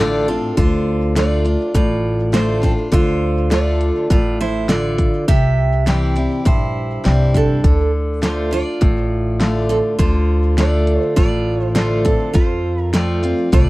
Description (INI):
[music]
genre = honky-tonk and classic country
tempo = 102 BPM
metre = 4/4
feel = straight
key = D minor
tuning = A4 = 440 Hz
[part]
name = picked steel-string acoustic guitar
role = accompaniment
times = 0.0-13.7 s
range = F2 to F4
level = -21 LUFS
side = left 1 dB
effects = none
[part]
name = upright bass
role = bass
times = 0.0-13.7 s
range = A1 to F2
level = -18 LUFS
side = equal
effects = none
[part]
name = picked steel-string acoustic guitar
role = melody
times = 0.3-13.7 s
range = C4 to E5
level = -21 LUFS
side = right 3 dB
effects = tape echo
[part]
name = pop drum kit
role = drums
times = 0.6-13.7 s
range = hi-hat, kick drum, snare drum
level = -17 LUFS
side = equal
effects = none
[sound]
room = little or no reverb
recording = dry, close 1970s-style studio recording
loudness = -14 LUFS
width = side -19 dB against mid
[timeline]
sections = 0.6-13.7 A section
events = none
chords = 0.0 Dm; 5.3 C; 7.6 Dm; 12.3 F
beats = | 0.57 1.16 1.75 2.33 | 2.92 3.51 4.10 4.69 | 5.28 5.87 6.46 7.04 | 7.63 8.22 8.81 9.40 | 9.99 10.58 11.17 11.76 | 12.35 12.94 13.53